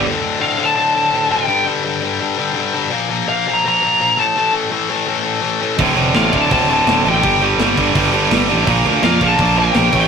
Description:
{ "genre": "heavy metal", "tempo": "167 BPM", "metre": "4/4", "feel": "straight", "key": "D minor", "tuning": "A4 = 440 Hz", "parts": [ { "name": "high-gain distorted guitar", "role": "riff", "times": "0.0-10.1 s", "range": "D2 to Bb3", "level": "-18 LUFS", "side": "left 5 dB", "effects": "distortion" }, { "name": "tight distorted guitar", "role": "riff", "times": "0.0, 5.8-10.1 s", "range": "D2 to Bb3", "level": "-16 LUFS", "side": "right 6 dB", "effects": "distortion" }, { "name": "fuzz fingered electric bass", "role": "bass", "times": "0.0, 5.8-10.1 s", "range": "D1 to F2", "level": "-21 LUFS", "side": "right 1 dB", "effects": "overdrive" }, { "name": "high-gain lead guitar", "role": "melody", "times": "0.4-10.1 s", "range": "F5 to Bb5", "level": "-16 LUFS", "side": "left 2 dB", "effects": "distortion" }, { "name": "tight metal drum kit", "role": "drums", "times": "5.8-10.0 s", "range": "crash cymbal, kick drum, snare drum", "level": "-20 LUFS", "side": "equal", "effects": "none" }, { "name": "smooth overdriven lead guitar", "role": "second line", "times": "6.2-10.1 s", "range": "F4 to A4", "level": "-28 LUFS", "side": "right 4 dB", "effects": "none" } ], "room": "moderate booth ambience, RT60 0.2 s", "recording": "rough rehearsal-room recording", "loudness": "-13 LUFS", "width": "side -6 dB against mid", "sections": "0.0-10.1 A section", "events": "none", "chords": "0.0 D5; 1.5 G5; 2.9 Bb5; 4.2 A5; 5.8 Dm; 7.2 G5; 8.7 Bb5" }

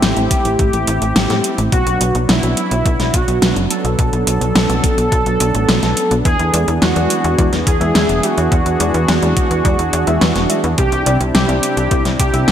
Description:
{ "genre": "synthwave", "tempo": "106 BPM", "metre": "4/4", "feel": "straight", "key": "unclear", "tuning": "A4 = 438 Hz", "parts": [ { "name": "wide unison lead", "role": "melody", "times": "0.0-12.5 s", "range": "E4 to A4", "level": "-19 LUFS", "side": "equal", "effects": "lush chorus, cassette tape, digital delay" }, { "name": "warm analog pad", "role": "sustained chords", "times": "0.0-12.5 s", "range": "C3 to G#4", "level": "-22 LUFS", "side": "right 1 dB", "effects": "chorus, sidechain pumping" }, { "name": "tight sequencer bass", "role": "bass", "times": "0.0-12.5 s", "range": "E1 to A2", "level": "-18 LUFS", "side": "equal", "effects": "tube saturation" }, { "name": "pop drum kit", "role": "drums", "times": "0.0-12.5 s", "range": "hi-hat, snare drum", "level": "-18 LUFS", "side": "equal", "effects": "overdrive, gated reverb" }, { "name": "electronic kick drum", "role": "drums", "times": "0.3-12.3 s", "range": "none", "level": "-17 LUFS", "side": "equal", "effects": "none" }, { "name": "mellow FM electric piano", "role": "stabs", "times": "6.5-12.5 s", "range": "C3 to E5", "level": "-22 LUFS", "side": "left 2 dB", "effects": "chorus" } ], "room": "moderate lush hall reverb, RT60 2.2 s", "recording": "bright 1980s-style digital production", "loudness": "-13 LUFS", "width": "side -9 dB against mid", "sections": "0.0-12.5 A section", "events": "none", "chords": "0.0 Am; 1.7 Bm; 6.3 E7; 10.8 Cadd9" }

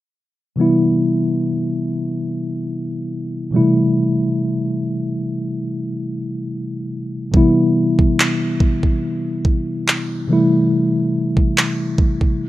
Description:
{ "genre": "contemporary R&B", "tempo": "71 BPM", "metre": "4/4", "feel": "swing 54% on 16ths", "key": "C major", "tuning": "A4 = 437 Hz", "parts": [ { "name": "mellow tine electric piano", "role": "accompaniment", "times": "0.6-12.5 s", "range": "B2 to E4", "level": "-17 LUFS", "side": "left 1 dB", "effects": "medium stereo tremolo" }, { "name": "smooth R&B drum kit", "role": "drums", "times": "7.3-12.4 s", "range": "handclaps, kick drum", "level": "-16 LUFS", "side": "right 1 dB", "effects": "none" }, { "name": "reverse cymbal", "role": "sound effects", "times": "12.4-12.5 s", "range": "none", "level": "-49 LUFS", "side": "right 5 dB", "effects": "none" } ], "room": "light reverb", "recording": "rough home demo mix", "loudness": "-16 LUFS", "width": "side -15 dB against mid", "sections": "0.6-12.5 A section", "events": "none", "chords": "0.6 Cmaj7; 3.5 Am7; 7.3 Cmaj7; 10.3 Am7" }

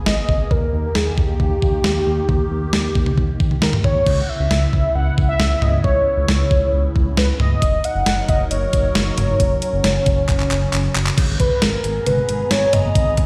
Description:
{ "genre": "synth-pop", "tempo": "135 BPM", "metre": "4/4", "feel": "straight", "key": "G# minor", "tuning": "A4 = 440 Hz", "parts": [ { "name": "phased analog pad", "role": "sustained chords", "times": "0.0-13.3 s", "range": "C#3 to A#5", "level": "-30 LUFS", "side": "equal", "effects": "phaser, chorus" }, { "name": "warm velvety synth lead", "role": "melody", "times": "0.1-13.3 s", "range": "G4 to F#5", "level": "-23 LUFS", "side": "equal", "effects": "chorus, tape echo" }, { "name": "smooth synth bass", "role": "bass", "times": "0.1-13.3 s", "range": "F#1 to D#2", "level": "-23 LUFS", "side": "equal", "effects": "none" }, { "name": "clean 12-bit digital drum machine", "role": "drums", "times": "0.1-13.3 s", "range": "crash cymbal, handclaps, hi-hat, kick drum, snare drum, toms", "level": "-21 LUFS", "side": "equal", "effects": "overdrive" } ], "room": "moderate digital room reverb, RT60 1.1 s", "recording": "played on a big sound system in a bare room, large studio reverb", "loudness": "-18 LUFS", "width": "mono", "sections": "0.0-4.1 A section; 4.1-11.2 B section; 11.2-13.3 C section", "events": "drum fill 10.3-11.2", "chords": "0.0 G#madd9; 0.5 D#; 4.1 C#m7; 7.6 F#6; 11.2 G#madd9" }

